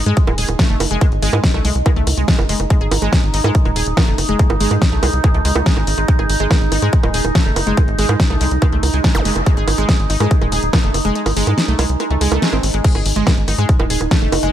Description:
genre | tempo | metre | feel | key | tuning
psychedelic trance | 142 BPM | 4/4 | straight | unclear | A4 = 440 Hz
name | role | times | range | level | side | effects
overtone-sweeping drone | sustained chords | 0.0-14.5 s | D#4 | -23 LUFS | right 2 dB | chorus, built-in reverb, sidechain pumping
tight sequencer bass | bass | 0.0-14.5 s | D#1 to G#2 | -18 LUFS | equal | none
wide unison pluck | riff | 0.1-14.5 s | G#3 to G#4 | -22 LUFS | equal | auto-pan, sidechain pumping, tape echo
big-room dance drum kit | drums | 0.1-14.5 s | bongos, crash cymbal, hi-hat, snare drum | -20 LUFS | right 1 dB | studio reverb
electronic kick drum | drums | 0.2-14.2 s | none | -15 LUFS | equal | studio reverb
zap | sound effects | 9.1-9.3 s | none | -27 LUFS | left 1 dB | none
room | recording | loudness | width
little or no reverb | none | -13 LUFS | side -11 dB against mid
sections
0.0-14.5 A section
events
kick drops out 11.2-12.8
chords
0.0 G#5

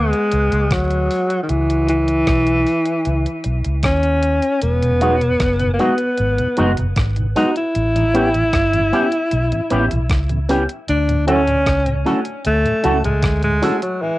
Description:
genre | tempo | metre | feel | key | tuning
lovers rock reggae | 77 BPM | 4/4 | straight | unclear | A4 = 440 Hz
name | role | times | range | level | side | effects
breathy alto saxophone | melody | 0.0-14.2 s | D#3 to E4 | -18 LUFS | left 1 dB | cassette tape, tape echo
vintage muted fingered electric bass | bass | 0.0-13.6 s | E1 to D#2 | -19 LUFS | equal | transformer saturation
crisp 8-bit digital drum machine | drums | 0.1-14.0 s | hi-hat, kick drum, rim click | -22 LUFS | equal | none
mellow tonewheel organ | accompaniment | 4.8-13.7 s | D2 to D#4 | -27 LUFS | right 1 dB | slow rotary speaker, cassette tape, tape echo
bright tine electric piano | accompaniment | 5.0-13.8 s | G#3 to G4 | -21 LUFS | left 1 dB | phaser, cassette tape
electric guitar with an envelope filter | stabs | 5.0-13.8 s | G#3 to A4 | -20 LUFS | right 2 dB | analog chorus, cassette tape
room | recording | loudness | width
moderate small room reverb, RT60 0.5 s | home recording on cassette, nothing above 10.8 kHz | -15 LUFS | side -17 dB against mid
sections
0.0-14.2 A section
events
none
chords
0.0 Dmaj7; 1.5 C#m7; 4.6 Emaj9; 7.7 A9; 10.9 Dmaj7

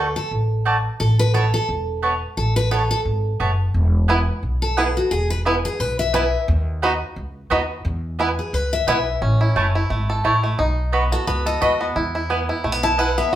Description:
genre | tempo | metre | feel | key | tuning
bluegrass | 175 BPM | 4/4 | swing 56% on 8ths | E major | A4 = 440 Hz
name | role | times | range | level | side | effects
picked steel-string acoustic guitar | accompaniment | 0.0-13.3 s | F#4 to A5 | -23 LUFS | left 2 dB | none
mandolin | stabs | 0.0-13.1 s | A3 to B5 | -23 LUFS | right 3 dB | none
upright bass | bass | 0.0-13.4 s | E1 to E2 | -21 LUFS | equal | none
bluegrass banjo | arpeggios | 4.1-13.4 s | A3 to A4 | -23 LUFS | right 1 dB | none
room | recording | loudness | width
wet large studio reverb, RT60 0.9 s | band playing live in one room | -18 LUFS | side -12 dB against mid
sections
0.0-9.2 A section; 9.2-13.4 A section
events
steel-string acoustic guitar solo 0.0-13.4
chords
0.0 D5; 1.0 Aadd9; 3.7 E; 6.5 B/D#; 7.8 E; 9.2 A; 10.6 B; 12.0 E

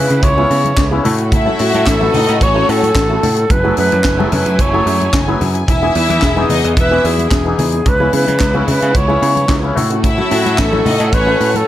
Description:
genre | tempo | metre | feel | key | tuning
disco | 110 BPM | 4/4 | straight | unclear | A4 = 441 Hz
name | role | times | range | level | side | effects
bright reedy alto flute | melody | 0.0-11.7 s | E4 to C#5 | -16 LUFS | equal | none
mellow clav | accompaniment | 0.0-11.6 s | C#3 to C#5 | -22 LUFS | left 4 dB | auto-wah
clear symphonic string section | sustained chords | 0.0-11.7 s | C#3 to G#5 | -24 LUFS | right 1 dB | none
picked electric bass | bass | 0.0-11.6 s | E1 to C#3 | -17 LUFS | right 1 dB | none
mellow electric guitar | accompaniment | 0.1-11.6 s | A3 to A4 | -24 LUFS | right 2 dB | lush chorus
tight funk drum kit | drums | 0.1-11.7 s | handclaps, hi-hat, kick drum, snare drum | -18 LUFS | equal | gated reverb
congas | percussion | 0.2-11.7 s | none | -24 LUFS | left 2 dB | none
rich studio string section | second line | 1.3-11.6 s | C#4 to E5 | -18 LUFS | left 2 dB | none
room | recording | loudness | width
light reverb, studio reverb | none | -11 LUFS | side -13 dB against mid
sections
0.0-11.7 A section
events
none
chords
0.0 C#m7; 1.0 A6; 3.5 F#m9; 5.7 Emaj7; 7.9 C#m7; 9.8 A6

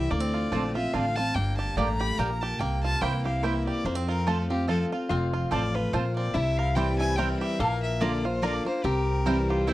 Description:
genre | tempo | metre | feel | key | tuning
bluegrass | 144 BPM | 3/4 | swing 56% on 8ths | F major | A4 = 440 Hz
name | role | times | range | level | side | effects
bluegrass banjo | melody | 0.0-9.7 s | Bb3 to Bb4 | -35 LUFS | right 5 dB | none
clear fiddle | melody | 0.0-9.7 s | E4 to B5 | -32 LUFS | left 2 dB | none
picked steel-string acoustic guitar | accompaniment | 0.0-9.7 s | F2 to F4 | -30 LUFS | left 1 dB | none
upright bass | bass | 0.0-9.7 s | F1 to F2 | -29 LUFS | equal | none
mandolin | stabs | 0.5-9.7 s | Bb3 to Bb5 | -30 LUFS | right 4 dB | none
lap resonator guitar | second line | 5.1-9.7 s | E4 to Bb4 | -32 LUFS | left 3 dB | none
room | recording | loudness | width
light reverb | dry, close 1970s-style studio recording | -24 LUFS | side -16 dB against mid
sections
0.0-5.1 A section; 5.1-9.7 B section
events
none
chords
0.1 Dm7; 1.4 Gm; 2.6 C7sus4; 3.0 C7; 3.9 F; 6.3 C; 7.6 Bb; 8.8 C

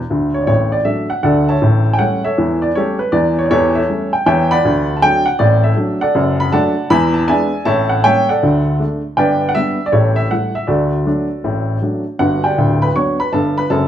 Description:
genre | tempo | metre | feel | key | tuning
jazz, stride piano | 159 BPM | 4/4 | swing 65% on 8ths | D major | A4 = 440 Hz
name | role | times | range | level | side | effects
warm upright piano | solo | 0.1-13.9 s | D1 to C#6 | -13 LUFS | equal | none
room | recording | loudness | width
wet large studio reverb, RT60 1.2 s | band playing live in one room | -13 LUFS | side -10 dB against mid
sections
0.1-12.2 A section; 12.2-13.9 B section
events
none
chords
0.1 D; 1.6 A7; 3.1 A7/E; 4.6 D; 6.2 D/F#; 6.9 E7; 7.7 A7b9; 8.4 D5; 9.2 G; 9.9 A5; 10.7 D; 12.2 Gmaj7

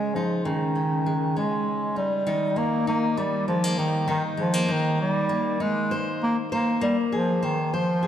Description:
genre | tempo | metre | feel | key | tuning
pop | 66 BPM (dotted quarters) | 6/8 | straight | unclear | A4 = 442 Hz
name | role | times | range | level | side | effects
clear bass clarinet | melody | 0.0-8.1 s | Eb3 to Bb3 | -24 LUFS | right 1 dB | slapback echo
fingerpicked steel-string acoustic guitar | accompaniment | 0.0-8.1 s | Db3 to C5 | -27 LUFS | left 2 dB | none
room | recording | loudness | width
wet concert hall reverb, RT60 2.1 s | none | -22 LUFS | side -10 dB against mid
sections
0.0-2.3 A section; 2.3-8.1 B section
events
none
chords
0.0 Dbsus2; 2.3 Eb; 5.9 Abadd9

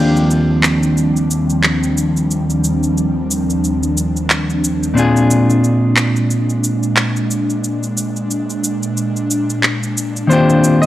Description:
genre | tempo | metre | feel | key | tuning
sunset chillout | 90 BPM | 4/4 | swing 57% on 16ths | Eb major | A4 = 440 Hz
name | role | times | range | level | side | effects
clean electric guitar | accompaniment | 0.0-10.9 s | Bb2 to Ab4 | -16 LUFS | left 1 dB | auto-pan, analog delay
airy breathy pad | sustained chords | 0.0-10.9 s | Eb2 to F4 | -18 LUFS | equal | chorus
electronic shaker and handclaps | drums | 0.2-10.9 s | none | -18 LUFS | equal | none
bright grand piano | melody | 10.3-10.9 s | C5 to Eb5 | -16 LUFS | equal | none
room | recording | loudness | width
light reverb | dry, gritty hardware recording | -13 LUFS | side -14 dB against mid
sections
0.0-10.9 A section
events
none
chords
0.0 Ebmaj13; 5.0 Bb7; 10.3 Ebmaj13

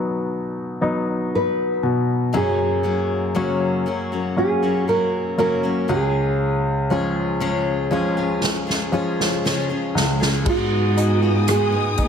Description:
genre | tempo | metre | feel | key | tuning
pop ballad | 59 BPM | 4/4 | straight | F# major | A4 = 437 Hz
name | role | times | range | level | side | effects
nylon-string guitar | melody | 0.0-12.1 s | D#4 to B4 | -23 LUFS | right 3 dB | none
clear baby grand piano | accompaniment | 0.0-12.1 s | C#2 to D#4 | -22 LUFS | left 1 dB | none
picked steel-string acoustic guitar | arpeggios | 2.3-12.1 s | F#2 to G#4 | -25 LUFS | left 5 dB | none
unplugged drum kit | drums | 8.4-12.1 s | crash cymbal, hi-hat, kick drum, rim click, snare drum | -24 LUFS | right 1 dB | none
warm studio string section | sustained chords | 10.5-12.1 s | B3 to D#6 | -28 LUFS | left 4 dB | none
dark chamber cello section | bass | 10.5-12.1 s | D#2 to G#2 | -21 LUFS | equal | none
room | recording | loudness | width
moderate concert hall reverb, RT60 2.4 s | none | -18 LUFS | side -7 dB against mid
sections
0.0-10.5 A section; 10.5-12.1 B section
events
drum fill 8.4-10.5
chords
0.0 B; 2.3 F#; 5.9 C#; 10.5 G#m7

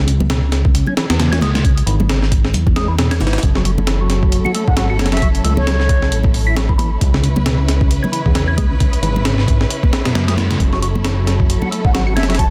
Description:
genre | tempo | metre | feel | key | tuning
breakbeat, breaks | 134 BPM | 4/4 | swing 57% on 16ths | F# minor | A4 = 438 Hz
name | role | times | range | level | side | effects
percussive tonewheel organ | riff | 0.0-12.4 s | B2 to F#4 | -25 LUFS | equal | chorus vibrato, slow rotary speaker, low-pass filter, digital delay
fat analog bass | bass | 0.0-12.5 s | F#1 to F#2 | -20 LUFS | equal | none
breakbeat sampler-style drum kit | drums | 0.1-12.5 s | hi-hat, kick drum, snare drum | -19 LUFS | equal | small room ambience
congas | percussion | 0.2-12.3 s | none | -25 LUFS | equal | none
warm symphonic string section | sustained chords | 3.4-12.5 s | C#3 to B4 | -28 LUFS | equal | sidechain pumping
mellow silver concert flute | melody | 4.7-6.2, 11.8-12.5 s | C#5 to A5 | -25 LUFS | equal | old record sound, digital delay
room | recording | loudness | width
small room ambience | dense, heavily limited modern master | -16 LUFS | mono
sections
0.0-12.5 A section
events
filter sweep on tonewheel organ 0.0-12.5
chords
0.0 C#m7; 3.4 F#m7; 7.0 C#m7; 10.6 F#m7

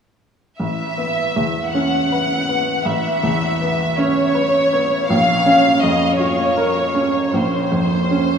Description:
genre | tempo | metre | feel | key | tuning
cinematic, emotional film score for orchestra | 53 BPM (dotted quarters) | 6/8 | rubato | unclear | A4 = 440 Hz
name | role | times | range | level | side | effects
rich studio violin section | melody | 0.6-8.4 s | C5 to Gb5 | -18 LUFS | left 1 dB | none
bright baby grand piano | accompaniment | 0.6-8.4 s | A1 to B4 | -18 LUFS | right 1 dB | none
room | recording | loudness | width
wet cathedral reverb, RT60 6.5 s | in a vast, echoing space, small room ambience | -15 LUFS | side -7 dB against mid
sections
0.6-8.4 A section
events
none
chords
0.6 Aadd9; 5.1 Bbmadd9

